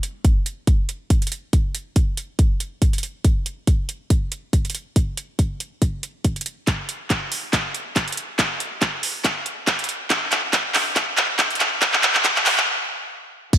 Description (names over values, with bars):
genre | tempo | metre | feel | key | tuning
future bass | 140 BPM | 4/4 | swing 54% on 16ths, half-time | none | none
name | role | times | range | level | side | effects
dubstep drum kit | drums | 0.0-13.6 s | crash cymbal, handclaps, hi-hat | -20 LUFS | right 1 dB | none
electronic kick drum | drums | 0.2-13.6 s | none | -18 LUFS | equal | none
room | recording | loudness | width
moderate lush hall reverb, RT60 2.0 s | high-pass filter | -19 LUFS | side -11 dB against mid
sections
0.0-13.5 A section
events
build-up 0.0-13.5; filter sweep 0.0-13.5; drum fill 6.7-12.7; stop 12.7-13.5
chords
none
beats
0.25 0.67 1.10 | 1.53 1.96 2.39 2.82 | 3.25 3.67 4.10 4.53 | 4.96 5.39 5.82 6.25 | 6.67 7.10 7.53 7.96 | 8.39 8.82 9.25 9.67 | 10.10 10.53 10.96 11.39 | 11.82 12.25 12.67 13.10 | 13.53